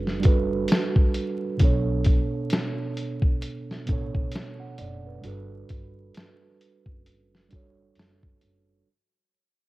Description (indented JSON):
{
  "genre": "lo-fi hip hop",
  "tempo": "66 BPM",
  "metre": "4/4",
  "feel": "swing 58% on 16ths",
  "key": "unclear",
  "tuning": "A4 = 440 Hz",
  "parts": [
    { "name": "mellow tine electric piano", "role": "accompaniment", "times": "0.0-8.9 s", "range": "B2 to F#5", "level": "-29 LUFS", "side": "right 4 dB", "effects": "medium stereo tremolo, cassette tape" },
    { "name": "upright bass", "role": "bass", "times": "0.0-8.8 s", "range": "F#1 to B1", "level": "-32 LUFS", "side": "equal", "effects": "none" },
    { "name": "lo-fi sampler-style drum kit", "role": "drums", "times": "0.1-8.7 s", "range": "hi-hat, kick drum, snare drum", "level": "-22 LUFS", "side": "equal", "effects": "vintage 12-bit sampler grit, cassette tape" }
  ],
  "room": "little or no reverb",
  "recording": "home recording on cassette, vinyl crackle",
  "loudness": "-22 LUFS",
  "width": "side -18 dB against mid",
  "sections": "0.0-8.9 A section",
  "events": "fade-out 0.0-8.9",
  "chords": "0.0 Gmaj9; 1.6 Bm7; 5.2 Gmaj9"
}